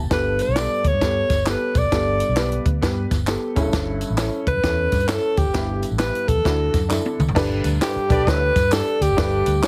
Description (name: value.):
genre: uptempo 1960s-style soul.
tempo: 132 BPM.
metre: 4/4.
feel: swing 63% on 8ths.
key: G lydian.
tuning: A4 = 440 Hz.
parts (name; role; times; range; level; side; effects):
warm upright piano; accompaniment; 0.0-9.7 s; G2 to D5; -28 LUFS; equal; plate reverb.
vintage muted fingered electric bass; bass; 0.0-9.6 s; F#1 to G2; -26 LUFS; equal; none.
breathy alto saxophone; melody; 0.1-9.7 s; G4 to D5; -24 LUFS; equal; plate reverb.
compact cocktail drum kit; drums; 0.1-9.7 s; crash cymbal, hi-hat, kick drum, snare drum, toms; -25 LUFS; equal; none.
tambourine and handclaps; percussion; 0.1-9.7 s; none; -36 LUFS; equal; none.
mellow horn section; second line; 8.1-8.4 s; A4 to D5; -31 LUFS; equal; plate reverb.
room: light reverb.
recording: heavily compressed radio sound, multiband compression.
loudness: -20 LUFS.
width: mono.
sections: 0.0-7.4 A section; 7.4-9.7 B section.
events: drum fill 6.9-7.4.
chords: 0.1 Gadd9; 3.5 A; 5.5 Em/G; 6.5 Dadd9; 7.4 Gadd9.